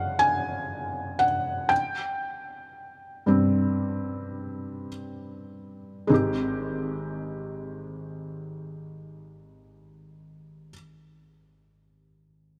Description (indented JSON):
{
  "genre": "pop",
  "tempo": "49-62 BPM",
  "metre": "4/4",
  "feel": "straight",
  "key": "Ab major",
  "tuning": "A4 = 442 Hz",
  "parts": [
    { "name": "felt-muted upright piano", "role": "accompaniment", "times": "0.0-12.6 s", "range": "Ab1 to Ab5", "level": "-28 LUFS", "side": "equal", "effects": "none" }
  ],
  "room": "light reverb, small room ambience",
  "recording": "bright 1980s-style digital production",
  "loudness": "-28 LUFS",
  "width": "mono",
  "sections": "0.0-6.1 A section; 6.1-10.9 B section",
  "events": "slowing down 0.0-6.1; felt piano solo 0.0-6.1",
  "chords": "0.0 Gbsus2; 1.7 Gsus4; 6.1 Abmaj7"
}